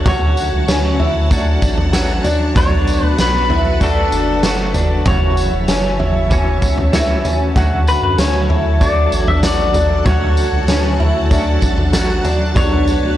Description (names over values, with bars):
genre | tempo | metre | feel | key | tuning
dream pop | 96 BPM | 4/4 | straight | D major | A4 = 442 Hz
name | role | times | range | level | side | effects
pedal steel guitar | melody | 0.0-13.1 s | A4 to E5 | -21 LUFS | left 1 dB | analog delay
semi-hollow electric guitar | accompaniment | 0.0-13.2 s | F#2 to F#4 | -24 LUFS | right 3 dB | tremolo, lush chorus
string machine, full ensemble | sustained chords | 0.0-13.2 s | F#4 to A5 | -24 LUFS | equal | ensemble chorus
fingerpicked twelve-string acoustic guitar | arpeggios | 0.0-13.2 s | B3 to F#4 | -21 LUFS | left 2 dB | analog chorus, analog delay
round analog bass | bass | 0.1-13.2 s | E1 to F#2 | -19 LUFS | equal | none
raw garage drum kit | drums | 0.1-13.0 s | kick drum, snare drum, tambourine, toms | -16 LUFS | equal | none
room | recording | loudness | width
studio ambience | dry, gritty hardware recording | -13 LUFS | side -12 dB against mid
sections
0.0-13.2 A section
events
none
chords
0.0 Dmaj7; 2.6 Bm7; 5.1 F#m7; 7.6 Dmaj7; 12.6 Bm7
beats
| 0.06 0.68 1.31 1.93 | 2.56 3.18 3.81 4.43 | 5.06 5.68 6.31 6.93 | 7.56 8.18 8.81 9.43 | 10.06 10.68 11.31 11.93 | 12.56